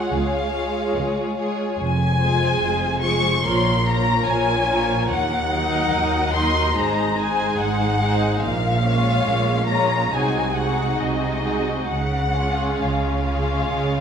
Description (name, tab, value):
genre	classical, slow romantic movement for string orchestra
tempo	71 BPM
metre	4/4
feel	uneven beats, rubato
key	Db major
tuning	A4 = 441 Hz
part	dark symphonic violin section	melody	0.0-14.0 s	Eb5 to Db6	-23 LUFS	left 3 dB	none
part	warm symphonic violin section	second line	0.0-14.0 s	F4 to Eb5	-26 LUFS	left 2 dB	none
part	warm studio viola section	accompaniment	0.0-14.0 s	F3 to F4	-26 LUFS	right 1 dB	none
part	rich symphonic cello section	bass	0.0-14.0 s	Db2 to Db3	-26 LUFS	right 2 dB	none
part	warm symphonic double bass section	bass	0.0-14.0 s	F1 to Eb2	-26 LUFS	right 1 dB	none
room	wet scoring stage reverb, RT60 1.8 s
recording	minimal, uncompressed stereo recording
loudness	-18 LUFS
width	side -7 dB against mid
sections	0.0-14.0 A section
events	none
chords	0.0 Db; 1.8 Fm; 3.4 Bbm7; 5.1 Ebm; 6.8 Ab7; 8.4 Bbm7; 10.1 Ab7/C; 11.9 Db